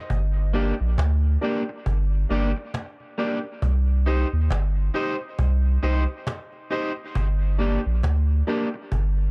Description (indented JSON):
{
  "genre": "dub reggae",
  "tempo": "68 BPM",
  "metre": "4/4",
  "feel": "swing 59% on 16ths",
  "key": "G minor",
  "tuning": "A4 = 440 Hz",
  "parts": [
    { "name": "warm sub bass", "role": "bass", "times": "0.1-9.3 s", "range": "G1 to Eb2", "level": "-23 LUFS", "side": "equal", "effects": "none" },
    { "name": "cajon", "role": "drums", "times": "0.1-9.3 s", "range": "none", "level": "-31 LUFS", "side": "equal", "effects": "none" },
    { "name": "electric guitar at the edge of break-up", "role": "accompaniment", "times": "0.5-8.8 s", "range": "Bb3 to C5", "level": "-32 LUFS", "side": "equal", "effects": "dub echo" },
    { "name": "warm upright piano", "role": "stabs", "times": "0.5-8.6 s", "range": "D4 to Eb5", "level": "-36 LUFS", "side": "equal", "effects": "dub echo" }
  ],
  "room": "studio reverb",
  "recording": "dark, warm production",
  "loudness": "-24 LUFS",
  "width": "mono",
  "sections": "0.1-9.3 A section",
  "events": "none",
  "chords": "0.1 Gm; 3.6 Cm; 7.2 Gm",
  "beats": "| 0.10 0.98 1.86 2.74 | 3.62 4.51 5.39 6.27 | 7.16 8.04 8.92"
}